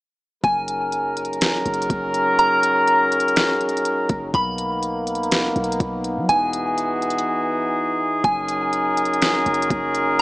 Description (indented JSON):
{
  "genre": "hip hop, atmospheric cloud-rap",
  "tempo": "123 BPM",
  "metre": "4/4",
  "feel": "half-time",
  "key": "F# mixolydian",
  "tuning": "A4 = 440 Hz",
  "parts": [
    { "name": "soft synth bell", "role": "melody", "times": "0.4-10.2 s", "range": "G#5 to B5", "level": "-23 LUFS", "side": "equal", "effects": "chorus, phaser, tape echo" },
    { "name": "mellow brass ensemble", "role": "sustained chords", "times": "0.4-10.2 s", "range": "E3 to A#4", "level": "-20 LUFS", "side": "equal", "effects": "sidechain pumping" },
    { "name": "clean 808-style bass", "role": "bass", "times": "0.4-10.2 s", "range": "E1 to F#3", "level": "-32 LUFS", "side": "equal", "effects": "none" },
    { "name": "smooth R&B drum kit", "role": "drums", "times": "0.4-10.2 s", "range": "hi-hat, kick drum, snare drum", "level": "-24 LUFS", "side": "equal", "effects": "none" }
  ],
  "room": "moderate huge ambient reverb, RT60 4.1 s",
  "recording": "small speaker sound",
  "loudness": "-18 LUFS",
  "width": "side -21 dB against mid",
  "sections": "0.4-10.2 A section",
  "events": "drums muted 7.3-8.2",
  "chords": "0.4 F#69; 4.3 Bmaj7; 6.3 Emaj7; 8.2 F#69"
}